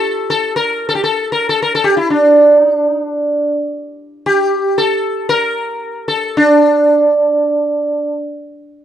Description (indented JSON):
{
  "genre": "indian classical",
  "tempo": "free time",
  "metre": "none",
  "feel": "none",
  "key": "unclear",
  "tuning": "A4 = 440 Hz",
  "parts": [
    { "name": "sitar", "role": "solo", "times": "0.0-8.1 s", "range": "D4 to Bb4", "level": "-12 LUFS", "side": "right 1 dB", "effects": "none" }
  ],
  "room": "light reverb",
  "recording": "dry, close 1970s-style studio recording",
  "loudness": "-11 LUFS",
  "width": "side -10 dB against mid",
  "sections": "0.0-8.8 A section",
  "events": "none",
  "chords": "none"
}